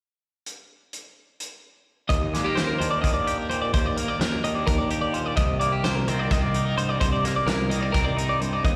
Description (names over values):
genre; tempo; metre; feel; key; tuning
math rock and midwest emo; 257 BPM (eighths); 7/8; straight; Eb major; A4 = 440 Hz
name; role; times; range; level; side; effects
loose indie drum kit; drums; 0.5-8.8 s; hi-hat, kick drum, snare drum; -29 LUFS; equal; none
twangy electric guitar; accompaniment; 2.1-8.8 s; Eb2 to G4; -31 LUFS; equal; harmonic tremolo, slapback echo
twelve-string electric guitar; arpeggios; 2.1-8.8 s; G4 to Eb5; -29 LUFS; equal; slapback echo
fuzz picked electric bass; bass; 2.1-8.8 s; C2 to Eb2; -30 LUFS; equal; overdrive
room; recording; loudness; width
light reverb; live gig heard through the venue's PA, recital hall reverb; -24 LUFS; mono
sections
0.5-2.1 A section; 2.1-8.8 B section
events
none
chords
0.5 N.C.; 2.1 Ebmaj7; 5.4 Cm7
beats
| 0.47 0.70 0.93 1.17 1.40 1.63 1.87 | 2.10 2.33 2.57 2.80 3.04 3.27 3.50 | 3.73 3.97 4.20 4.43 4.67 4.90 5.14 | 5.37 5.60 5.84 6.07 6.30 6.54 6.77 | 7.00 7.24 7.47 7.70 7.94 8.17 8.40 | 8.64